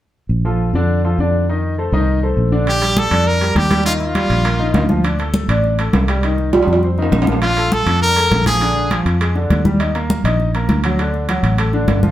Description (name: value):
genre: latin, salsa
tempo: 202 BPM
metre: 4/4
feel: straight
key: Bb major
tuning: A4 = 440 Hz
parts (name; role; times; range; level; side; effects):
- fingered electric bass; bass; 0.3-12.1 s; G1 to F2; -17 LUFS; equal; none
- clear concert grand piano; accompaniment; 0.4-12.1 s; D3 to Eb5; -20 LUFS; left 1 dB; none
- brilliant trumpet; melody; 2.7-4.9, 7.4-9.0 s; F4 to Bb4; -17 LUFS; equal; plate reverb
- congas; percussion; 2.7-12.1 s; none; -20 LUFS; left 1 dB; none
- timbales; percussion; 2.7-12.0 s; none; -22 LUFS; right 3 dB; none
room: wet studio reverb, RT60 0.7 s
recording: heard from further back in the room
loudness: -14 LUFS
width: side -13 dB against mid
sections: 0.3-2.7 A section; 2.7-12.1 B section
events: drum fill 6.5-7.4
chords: 0.3 Bbmaj7; 1.5 F7; 2.7 Bb6; 5.0 D5; 6.2 Cm; 6.8 F5; 7.4 Bbmaj7; 8.6 Bb7; 9.8 Eb5; 11.0 D